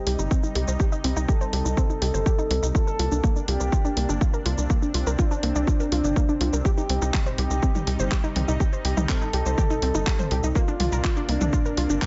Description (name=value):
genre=melodic techno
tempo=123 BPM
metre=4/4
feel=straight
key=C dorian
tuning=A4 = 442 Hz
part: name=expressive synth lead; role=melody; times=0.0-11.9 s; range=D4 to A4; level=-32 LUFS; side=equal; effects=subtle chorus, sidechain pumping, dub echo
part: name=lush unison pad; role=sustained chords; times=0.0-12.1 s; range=C3 to Eb4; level=-36 LUFS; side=equal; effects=chorus, vintage 12-bit sampler grit, sidechain pumping
part: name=unison pluck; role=arpeggios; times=0.0-12.1 s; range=Bb3 to C5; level=-33 LUFS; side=equal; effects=sidechain pumping, tape echo
part: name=tight sequencer bass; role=bass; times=0.1-12.0 s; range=G1 to C2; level=-27 LUFS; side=equal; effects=sidechain pumping
part: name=house drum kit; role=drums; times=0.1-12.1 s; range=handclaps, hi-hat, shaker, toms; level=-34 LUFS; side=equal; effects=none
part: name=electronic kick drum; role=drums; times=0.3-12.1 s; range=none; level=-25 LUFS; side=equal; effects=none
room=little or no reverb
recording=nothing above 7.8 kHz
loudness=-24 LUFS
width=mono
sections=0.0-12.1 A section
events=filter sweep on synth arpeggio sound 0.0-12.1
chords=0.0 Cm; 2.8 Bb; 6.7 Cm; 10.6 Bb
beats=0.31 | 0.80 1.29 1.77 2.26 | 2.75 3.24 3.73 4.21 | 4.70 5.19 5.68 6.17 | 6.65 7.14 7.63 8.12 | 8.60 9.09 9.58 10.07 | 10.55 11.04 11.53 12.02